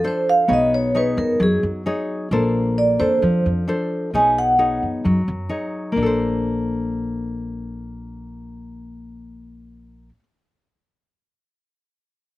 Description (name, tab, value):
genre	bossa nova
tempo	132 BPM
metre	4/4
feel	straight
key	unclear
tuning	A4 = 440 Hz
part	vibraphone with medium mallets	melody	0.0-4.8 s	G#4 to G#5	-18 LUFS	right 1 dB	none
part	nylon-string guitar	accompaniment	0.0-10.2 s	F3 to C#5	-22 LUFS	left 2 dB	none
part	upright bass	bass	0.0-10.1 s	Bb1 to F#2	-28 LUFS	equal	none
room	little or no reverb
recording	recorded outdoors, with no room sound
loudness	-18 LUFS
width	side -16 dB against mid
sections	0.0-6.0 A section; 6.0-9.6 B section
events	vibraphone solo 0.0-6.0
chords	0.5 B69; 2.3 Bbmaj9; 4.1 B69; 6.0 Bbmaj9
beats	0.04 | 0.50 0.95 1.41 1.86 | 2.31 2.77 3.23 3.68 | 4.13 4.59 5.04 5.50 | 5.96 6.41 6.87 7.32 | 7.78 8.23 8.69 9.14